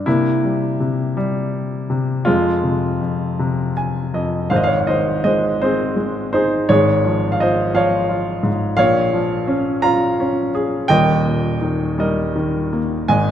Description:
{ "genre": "classical, lyrical solo piano", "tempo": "53-58 BPM (dotted quarters)", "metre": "6/8", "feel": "rubato", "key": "F minor, Ab major from 4.5 s", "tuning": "A4 = 440 Hz", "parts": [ { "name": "clear baby grand piano", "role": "solo", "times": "0.0-13.3 s", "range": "Eb1 to Bb5", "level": "-16 LUFS", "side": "equal", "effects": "none" } ], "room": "moderate concert hall reverb, RT60 2.1 s", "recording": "none", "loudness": "-16 LUFS", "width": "side -10 dB against mid", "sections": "0.0-4.5 A section; 4.5-13.3 B section", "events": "grand piano fill 3.4-4.5", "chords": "0.1 C7; 2.3 Fm; 4.5 Ab; 8.8 Bbm7; 10.9 Eb", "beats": "| 0.07 1.17 | 2.27 3.39 | 4.52 5.62 | 6.69 7.74 | 8.78 9.83 | 10.89 11.97 | 13.09" }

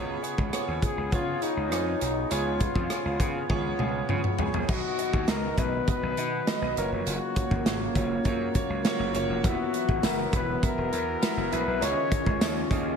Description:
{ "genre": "1980s-style pop", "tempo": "101 BPM", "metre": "4/4", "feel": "straight", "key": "unclear", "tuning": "A4 = 441 Hz", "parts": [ { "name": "clear concert grand piano", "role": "accompaniment", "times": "0.0-13.0 s", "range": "B2 to E5", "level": "-31 LUFS", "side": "right 2 dB", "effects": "analog chorus" }, { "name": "gritty slap bass", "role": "bass", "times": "0.0-12.9 s", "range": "E1 to C#3", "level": "-33 LUFS", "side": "equal", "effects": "overdrive" }, { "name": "modern studio drum kit", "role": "drums", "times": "0.2-12.8 s", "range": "crash cymbal, hi-hat, kick drum, rim click, snare drum, toms", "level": "-29 LUFS", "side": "equal", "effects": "none" }, { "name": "breathy flugelhorn", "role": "melody", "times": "0.8-12.7 s", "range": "D#4 to C#5", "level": "-31 LUFS", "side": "left 4 dB", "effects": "analog delay" }, { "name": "chorused pulse-width pad", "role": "sustained chords", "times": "4.7-13.0 s", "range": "C#3 to E#4", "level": "-33 LUFS", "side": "equal", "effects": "none" }, { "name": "tambourine", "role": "percussion", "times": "10.0-12.6 s", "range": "none", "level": "-46 LUFS", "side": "left 9 dB", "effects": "none" } ], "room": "wet lush hall reverb, RT60 2.5 s", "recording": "dreamy mix soaked in reverb, lossy compression artefacts", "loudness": "-25 LUFS", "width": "side -6 dB against mid", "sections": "0.0-4.7 A section; 4.7-13.0 B section", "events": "drum fill 3.5-4.7", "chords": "0.0 C#7; 4.7 B; 6.8 F#maj7; 9.4 Esus2; 11.8 C#add9", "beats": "0.53 1.13 1.72 | 2.31 2.91 3.50 4.10 | 4.69 5.28 5.88 6.47 | 7.07 7.66 8.26 8.85 | 9.44 10.04 10.63 11.22 | 11.82 12.41" }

